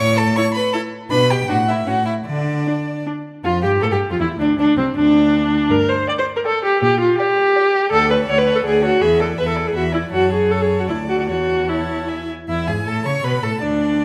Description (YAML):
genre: quick classical-period movement for string quartet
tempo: 147-167 BPM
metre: 3/4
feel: rubato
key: A major from 7.9 s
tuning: A4 = 444 Hz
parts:
  - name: rich violin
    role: melody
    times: 0.0-14.0 s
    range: C4 to C#6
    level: -29 LUFS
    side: equal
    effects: none
  - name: clear violin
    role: second line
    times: 0.0-14.0 s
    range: C4 to E5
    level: -27 LUFS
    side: equal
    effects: none
  - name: rich cello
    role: bass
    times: 0.0-14.0 s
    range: C2 to D3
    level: -25 LUFS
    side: equal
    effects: none
  - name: rich viola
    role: accompaniment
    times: 0.4-14.0 s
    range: C4 to D5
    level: -19 LUFS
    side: equal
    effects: none
room: moderate recital hall reverb, RT60 1.7 s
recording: none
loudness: -18 LUFS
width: mono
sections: 0.0-3.4 A section; 3.4-12.5 B section; 12.5-14.0 C section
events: none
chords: 0.0 A5; 1.1 G/B; 1.5 D/A; 1.9 A; 2.3 N.C.; 3.4 Dm/F; 4.6 Csus2; 5.7 G5; 6.8 Gm/Bb; 7.9 Dmaj7; 9.0 E7; 10.1 F#m; 10.9 Dadd9; 11.3 A/E; 12.1 E; 12.5 A/E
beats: 0.36 0.74 | 1.11 1.49 1.87 | 2.26 2.66 3.05 | 3.44 3.82 4.20 | 4.58 4.96 5.33 | 5.71 6.08 6.45 | 6.82 7.18 7.55 | 7.92 8.28 8.65 | 9.02 9.38 9.75 | 10.12 10.50 10.88 | 11.28 11.69 12.09 | 12.48 12.87 13.24 | 13.62 13.99